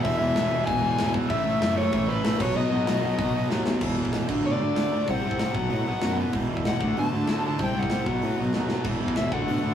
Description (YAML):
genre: punk rock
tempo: 191 BPM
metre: 4/4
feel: straight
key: E major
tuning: A4 = 440 Hz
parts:
  - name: overdriven electric guitar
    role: melody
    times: 0.0-9.7 s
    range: B4 to A5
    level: -28 LUFS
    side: left 3 dB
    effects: none
  - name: distorted electric guitar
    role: riff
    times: 0.0-9.7 s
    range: E2 to D4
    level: -27 LUFS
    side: right 2 dB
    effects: distortion
  - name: heavy high-gain guitar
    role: riff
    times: 0.0-3.7, 8.8-9.7 s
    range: A2 to E4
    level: -40 LUFS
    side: equal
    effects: none
  - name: sludgy distorted guitar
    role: riff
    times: 0.0-9.7 s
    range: E2 to D4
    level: -32 LUFS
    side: left 2 dB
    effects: overdrive
  - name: fuzz picked electric bass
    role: bass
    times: 0.0-9.7 s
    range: E1 to B2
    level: -30 LUFS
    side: equal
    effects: overdrive
  - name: tight metal drum kit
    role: drums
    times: 0.0-9.6 s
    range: crash cymbal, hi-hat, kick drum, snare drum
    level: -30 LUFS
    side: equal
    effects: none
room: moderate booth ambience, RT60 0.3 s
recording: rough rehearsal-room recording, small room ambience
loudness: -22 LUFS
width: side -9 dB against mid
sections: 0.0-3.8 A section; 3.8-9.7 B section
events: drum fill 3.5-3.8, 8.5-8.9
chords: 0.0 E; 1.3 A; 2.4 B; 3.8 E5; 4.3 D5; 5.1 C5; 5.6 B5; 6.3 E5; 6.8 D5; 7.6 C5; 8.1 B; 8.9 E